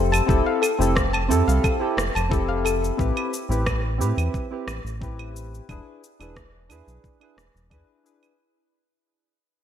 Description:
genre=sunset chillout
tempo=89 BPM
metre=4/4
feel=straight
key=unclear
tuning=A4 = 440 Hz
part: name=soft electric-piano-like synth keys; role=accompaniment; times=0.0-8.3 s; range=C4 to B4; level=-26 LUFS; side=moving between left 6 dB and right 7 dB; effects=chorus, auto-pan, ping-pong delay
part: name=soft round pluck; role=arpeggios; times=0.0-2.8 s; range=A4 to A5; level=-28 LUFS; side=left 4 dB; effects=chorus, ping-pong delay
part: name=round analog bass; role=bass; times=0.0-7.8 s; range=E1 to A2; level=-24 LUFS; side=equal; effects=none
part: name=electronic claves, shaker and rim click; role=drums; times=0.1-8.4 s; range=none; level=-29 LUFS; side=right 2 dB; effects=small room reverb, gated reverb
part: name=electronic kick drum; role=drums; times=0.3-7.9 s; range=none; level=-25 LUFS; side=equal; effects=small room reverb
room=moderate lush hall reverb, RT60 2.0 s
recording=bright 1980s-style digital production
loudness=-20 LUFS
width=side -9 dB against mid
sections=0.0-8.4 A section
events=fade-out 0.0-8.4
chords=0.0 Fmaj7; 3.0 Am7; 5.7 E7

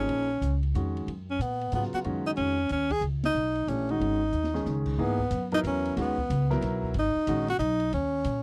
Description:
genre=modal jazz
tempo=184 BPM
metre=3/4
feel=swing 64% on 8ths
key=G# minor from 5.0 s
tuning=A4 = 440 Hz
part: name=warm tenor saxophone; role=melody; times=0.0-8.4 s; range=Cb4 to Ab4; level=-30 LUFS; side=equal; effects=none
part: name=clear concert grand piano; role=accompaniment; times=0.0-7.5 s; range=Db3 to A#4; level=-34 LUFS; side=equal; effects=none
part: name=upright bass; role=bass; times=0.0-8.4 s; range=Ab1 to Bb2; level=-33 LUFS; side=equal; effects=none
part: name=open jazz drum kit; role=drums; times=0.1-8.3 s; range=crash cymbal, hi-hat, kick drum, ride cymbal, snare drum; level=-42 LUFS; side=equal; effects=none
room=light reverb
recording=dry, close 1970s-style studio recording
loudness=-28 LUFS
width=mono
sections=0.0-5.0 A section; 5.0-8.4 B section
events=band accent 3.2; drum fill 4.3-4.7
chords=0.0 Eb9sus4; 1.1 Db9sus4; 5.0 G#m11

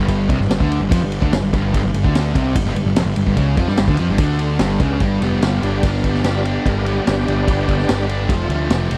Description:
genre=classic rock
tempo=146 BPM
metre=4/4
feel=straight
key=G mixolydian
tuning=A4 = 440 Hz
part: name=bright tonewheel organ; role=sustained chords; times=0.0-8.6 s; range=G3 to B4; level=-29 LUFS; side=equal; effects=overdrive, chorus vibrato, fast rotary speaker
part: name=biting overdriven guitar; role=riff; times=0.0-9.0 s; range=F2 to G4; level=-26 LUFS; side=equal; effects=none
part: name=distorted electric guitar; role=riff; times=0.0-9.0 s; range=F2 to G4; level=-26 LUFS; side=equal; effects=distortion
part: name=fuzz picked electric bass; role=bass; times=0.0-9.0 s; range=F1 to G2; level=-22 LUFS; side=equal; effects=overdrive
part: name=vintage drum kit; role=drums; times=0.1-9.0 s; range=kick drum, ride cymbal, snare drum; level=-23 LUFS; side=equal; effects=none
room=small room ambience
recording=dry, close 1970s-style studio recording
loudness=-18 LUFS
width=mono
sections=0.0-5.0 A section; 5.0-9.0 B section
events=tonewheel organ solo 5.0-9.0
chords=0.0 G; 8.3 Fadd9

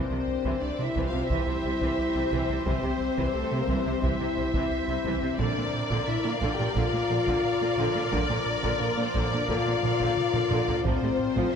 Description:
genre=cinematic, hybrid orchestral and electronic film score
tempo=88 BPM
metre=4/4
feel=straight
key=unclear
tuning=A4 = 440 Hz
part: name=warm symphonic violin section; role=melody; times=0.0-11.6 s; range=C5 to D5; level=-33 LUFS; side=left 5 dB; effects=none
part: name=warm symphonic violin section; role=second line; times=0.0-11.6 s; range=A4 to G5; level=-36 LUFS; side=left 2 dB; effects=none
part: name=warm symphonic viola section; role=accompaniment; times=0.0-11.6 s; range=C3 to Bb4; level=-34 LUFS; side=right 2 dB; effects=none
part: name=dark French horn section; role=sustained chords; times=0.0-11.5 s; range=A3 to G4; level=-30 LUFS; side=left 4 dB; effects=none
part: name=evolving wavetable pad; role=sustained chords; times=0.0-11.6 s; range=F3 to E5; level=-34 LUFS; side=left 2 dB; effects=chorus, built-in reverb
part: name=round analog bass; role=riff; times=0.0-11.6 s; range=C2 to Bb3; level=-33 LUFS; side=right 2 dB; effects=none
part: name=warm symphonic cello section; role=bass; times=0.1-11.4 s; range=A2 to C3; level=-35 LUFS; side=right 3 dB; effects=none
part: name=taiko ensemble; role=drums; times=0.4-11.6 s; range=none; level=-35 LUFS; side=equal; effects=none
part: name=dark symphonic double bass section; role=bass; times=1.0-10.9 s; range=A1 to C2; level=-35 LUFS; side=right 4 dB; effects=none
room=wet concert hall reverb, RT60 2.0 s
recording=none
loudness=-24 LUFS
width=side -7 dB against mid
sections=0.0-11.6 A section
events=drum fill 10.2-10.8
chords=0.0 C; 5.4 Bb; 10.8 F/A

